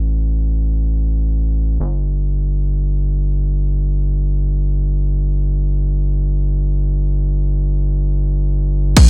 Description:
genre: driving peak-time techno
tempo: free time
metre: none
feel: none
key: unclear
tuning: A4 = 436 Hz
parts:
  - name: gritty driven synth bass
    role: bass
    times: 0.0-8.9 s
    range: G1 to A1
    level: -16 LUFS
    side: equal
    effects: sidechain pumping
  - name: electronic kick drum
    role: drums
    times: 9.0-9.1 s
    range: none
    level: -5 LUFS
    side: equal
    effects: none
  - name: punchy analog drum machine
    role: drums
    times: 9.0-9.1 s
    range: crash cymbal, hi-hat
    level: -16 LUFS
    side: right 2 dB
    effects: sidechain pumping on cymbals, sidechain pumping on hats
room: little or no reverb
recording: none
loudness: -15 LUFS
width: side -30 dB against mid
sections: 0.0-9.0 A section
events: none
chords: none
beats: free time

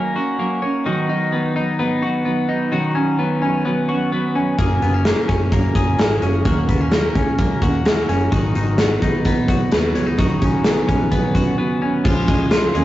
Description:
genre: jangly indie pop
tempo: 129 BPM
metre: 4/4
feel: straight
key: unclear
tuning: A4 = 440 Hz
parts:
  - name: fingerpicked steel-string acoustic guitar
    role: accompaniment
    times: 0.0-12.8 s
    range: G#2 to A#4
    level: -24 LUFS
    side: right 3 dB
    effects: none
  - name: twelve-string electric guitar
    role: arpeggios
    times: 0.0-12.8 s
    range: D#3 to G#4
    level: -20 LUFS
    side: left 1 dB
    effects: spring reverb
  - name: vintage muted fingered electric bass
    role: bass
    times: 4.6-12.8 s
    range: F#1 to D#2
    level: -23 LUFS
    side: equal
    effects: none
  - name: big rock drum kit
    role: drums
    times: 4.6-12.8 s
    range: crash cymbal, hi-hat, kick drum, snare drum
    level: -18 LUFS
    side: equal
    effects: none
room: moderate studio reverb, RT60 0.5 s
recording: rough rehearsal-room recording, tube saturation, vinyl crackle, nothing above 7.7 kHz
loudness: -16 LUFS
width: side -14 dB against mid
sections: 0.0-12.0 A section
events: break 11.6-12.0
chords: 0.0 D#m7; 0.9 G#m7; 2.7 Badd9; 4.6 F#add9; 6.5 D#m7; 8.3 G#m7; 10.2 Badd9; 12.0 C#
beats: 0.39 | 0.85 1.32 1.79 2.25 | 2.72 3.19 3.65 4.12 | 4.59 5.05 5.52 5.99 | 6.45 6.92 7.39 7.85 | 8.32 8.79 9.25 9.72 | 10.19 10.65 11.12 11.58 | 12.05 12.52

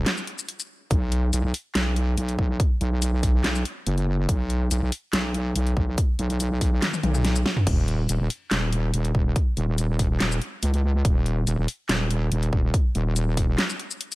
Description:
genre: heavy wobble dubstep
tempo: 142 BPM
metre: 4/4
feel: half-time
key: unclear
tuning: A4 = 441 Hz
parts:
  - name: wobble bass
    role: bass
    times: 0.0-13.6 s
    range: Eb1 to Db2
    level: -23 LUFS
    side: equal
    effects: chorus, overdrive
  - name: dubstep drum kit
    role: drums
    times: 0.1-14.2 s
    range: crash cymbal, handclaps, hi-hat, shaker, snare drum, toms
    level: -26 LUFS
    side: equal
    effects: none
  - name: electronic kick drum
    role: drums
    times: 0.9-13.5 s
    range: none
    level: -22 LUFS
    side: equal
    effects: none
room: little or no reverb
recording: none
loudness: -22 LUFS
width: side -20 dB against mid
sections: 0.0-14.2 A section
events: drum fill 6.8-7.7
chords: none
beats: 0.06 0.48 | 0.91 1.33 1.75 2.18 | 2.60 3.02 3.44 3.87 | 4.29 4.71 5.13 5.56 | 5.98 6.40 6.82 7.25 | 7.67 8.09 8.51 8.94 | 9.36 9.78 10.20 10.63 | 11.05 11.47 11.89 12.32 | 12.74 13.16 13.58 14.01

